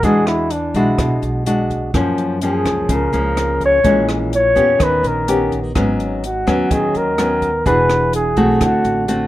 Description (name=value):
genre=bossa nova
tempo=126 BPM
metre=4/4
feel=straight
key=unclear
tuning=A4 = 440 Hz
part: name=breathy flugelhorn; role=melody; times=0.0-9.1 s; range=D4 to Db5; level=-17 LUFS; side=equal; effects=plate reverb
part: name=nylon-string guitar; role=accompaniment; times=0.0-9.3 s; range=Gb2 to G#4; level=-18 LUFS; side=left 1 dB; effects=none
part: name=upright bass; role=bass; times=0.0-9.3 s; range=E1 to Gb2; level=-23 LUFS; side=right 1 dB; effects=none
part: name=compact cocktail drum kit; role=drums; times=0.0-9.2 s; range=hi-hat, kick drum, rim click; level=-23 LUFS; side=right 1 dB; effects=none
room=moderate studio ambience, RT60 0.5 s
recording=rough home demo mix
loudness=-14 LUFS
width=side -15 dB against mid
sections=0.0-9.3 A section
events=none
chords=0.0 E9; 1.9 Gbmaj7; 3.8 Bbm7b5; 4.8 Eb7b13; 5.8 Abm11; 7.7 E9; 8.6 D7